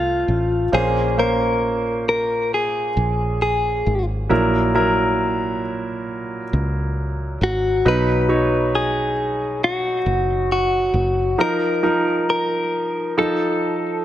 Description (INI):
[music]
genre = pop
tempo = 68 BPM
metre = 4/4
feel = straight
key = Bb minor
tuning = A4 = 440 Hz
[part]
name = direct-recorded clean electric guitar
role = melody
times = 0.0-14.0 s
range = F4 to B4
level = -20 LUFS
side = left 1 dB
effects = phaser
[part]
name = clear grand piano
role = accompaniment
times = 0.0-14.0 s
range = Bb2 to Db5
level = -22 LUFS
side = right 1 dB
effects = none
[part]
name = fingered electric bass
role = bass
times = 0.0-11.4 s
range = F#1 to Db2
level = -23 LUFS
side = equal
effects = none
[sound]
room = moderate recital hall reverb, RT60 1.4 s, small room ambience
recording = none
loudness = -18 LUFS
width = side -12 dB against mid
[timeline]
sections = 0.0-14.0 A section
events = none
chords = 0.0 F; 0.7 Bbmadd9; 4.3 Gb7/Bb; 7.8 B; 11.4 F7sus4; 13.2 F7